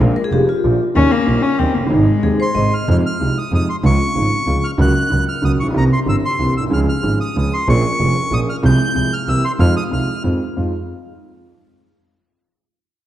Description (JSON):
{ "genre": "tango", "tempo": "188 BPM", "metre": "3/4", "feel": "rubato", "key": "F minor", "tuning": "A4 = 441 Hz", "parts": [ { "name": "rich cello", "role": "second line", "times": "0.0-2.6 s", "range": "Ab3 to Db4", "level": "-19 LUFS", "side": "left 4 dB", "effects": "none" }, { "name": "warm upright piano", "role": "accompaniment", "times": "0.0-10.7 s", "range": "Eb1 to Ab4", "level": "-19 LUFS", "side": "right 1 dB", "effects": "none" }, { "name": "rich double bass", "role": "bass", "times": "0.0-10.7 s", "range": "F1 to F2", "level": "-18 LUFS", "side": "right 1 dB", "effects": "none" }, { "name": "vibraphone with medium hard mallets", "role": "second line", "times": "0.2-2.9 s", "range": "F4 to Eb5", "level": "-20 LUFS", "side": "left 2 dB", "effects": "none" }, { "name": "bandoneon", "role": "melody", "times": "2.4-10.2 s", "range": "Bb5 to G6", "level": "-22 LUFS", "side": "equal", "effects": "none" } ], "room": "moderate scoring stage reverb, RT60 1.9 s", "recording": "dark, warm production", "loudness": "-14 LUFS", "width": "side -12 dB against mid", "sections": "0.0-2.9 A section; 2.9-10.6 B section", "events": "cello solo 0.0-2.9", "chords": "0.0 Bb; 1.0 Eb7; 1.9 Ab; 2.9 Fm7; 3.8 Db; 4.8 Gb/Db; 5.7 C7; 6.7 Db; 7.7 Bbm7; 8.6 Fm/C; 9.3 C7; 9.6 Fm7", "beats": "| 0.00 0.32 0.64 | 0.95 1.27 1.59 | 1.91 2.23 2.55 | 2.88 3.20 3.52 | 3.84 4.15 4.47 | 4.79 5.11 5.43 | 5.75 6.07 6.39 | 6.72 7.04 7.36 | 7.68 8.00 8.32 | 8.64 8.96 9.28 | 9.60 9.92 10.24 | 10.57" }